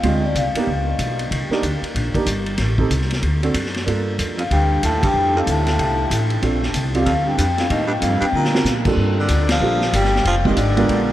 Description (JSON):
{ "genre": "jazz, small-group swing and bop", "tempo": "188 BPM", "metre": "4/4", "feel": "swing 62% on 8ths", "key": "unclear", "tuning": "A4 = 441 Hz", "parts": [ { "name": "vibraphone with soft mallets", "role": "melody", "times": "0.0-1.2, 4.4-11.1 s", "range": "D5 to A#5", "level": "-23 LUFS", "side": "left 3 dB", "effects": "none" }, { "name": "warm grand piano", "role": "accompaniment", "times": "0.0-11.1 s", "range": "G2 to A#4", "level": "-24 LUFS", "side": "right 3 dB", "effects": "none" }, { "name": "upright bass", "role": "bass", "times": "0.0-11.1 s", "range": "F1 to D3", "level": "-21 LUFS", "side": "equal", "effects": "none" }, { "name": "vintage drum kit", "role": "drums", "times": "0.0-11.0 s", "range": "crash cymbal, hi-hat, kick drum, ride cymbal, snare drum", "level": "-24 LUFS", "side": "equal", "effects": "none" }, { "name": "growling baritone saxophone", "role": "second line", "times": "4.4-11.1 s", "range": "Eb2 to G3", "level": "-23 LUFS", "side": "right 1 dB", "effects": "none" } ], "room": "wet huge ambient reverb, RT60 7.7 s", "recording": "in a vast, echoing space", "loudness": "-16 LUFS", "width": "side -13 dB against mid", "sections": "0.0-9.0 A section; 9.0-11.1 B section", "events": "band accent 5.0, 9.5; drum fill 8.3-8.7", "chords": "0.0 Dm7b5; 0.7 Db7; 1.3 Cm9; 2.6 Am7b5; 3.2 D7; 3.9 Gm9; 5.1 F; 6.4 Bbmaj7; 7.7 Ebadd9; 8.3 D7alt; 9.0 Gm7; 10.2 Fm7", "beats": "| 0.03 0.35 0.67 0.99 | 1.30 1.62 1.94 2.26 | 2.58 2.90 3.22 3.54 | 3.86 4.18 4.50 4.82 | 5.14 5.46 5.78 6.10 | 6.42 6.74 7.06 7.38 | 7.70 8.02 8.34 8.66 | 8.97 9.29 9.61 9.93 | 10.25 10.57 10.89" }